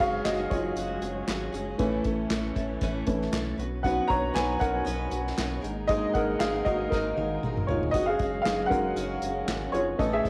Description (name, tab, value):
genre	piano-driven pop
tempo	117 BPM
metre	4/4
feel	swing 56% on 16ths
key	unclear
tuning	A4 = 440 Hz
part	warm upright piano	accompaniment	0.0-10.3 s	E3 to A#5	-30 LUFS	equal	none
part	dark studio string section	sustained chords	0.0-10.3 s	E3 to D#4	-40 LUFS	equal	none
part	picked steel-string acoustic guitar	riff	0.0-10.3 s	G#2 to B4	-38 LUFS	equal	none
part	sub bass with octave	bass	0.0-10.3 s	E#1 to B1	-39 LUFS	equal	none
part	unplugged drum kit	drums	0.0-10.3 s	handclaps, hi-hat, kick drum, snare drum, toms	-35 LUFS	equal	cassette tape
room	moderate spring reverb, RT60 2.2 s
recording	home recording on cassette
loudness	-28 LUFS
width	mono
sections	0.0-10.3 A section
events	upright piano solo 0.0-10.3; drum fill 6.9-7.9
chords	0.0 F#sus2; 1.8 A; 3.6 Bsus2; 5.6 G#sus2; 7.9 F#sus2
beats	0.26 0.77 1.28 | 1.79 2.31 2.82 3.33 | 3.84 4.36 4.87 5.38 | 5.89 6.41 6.92 7.43 | 7.94 8.46 8.97 9.48 | 9.99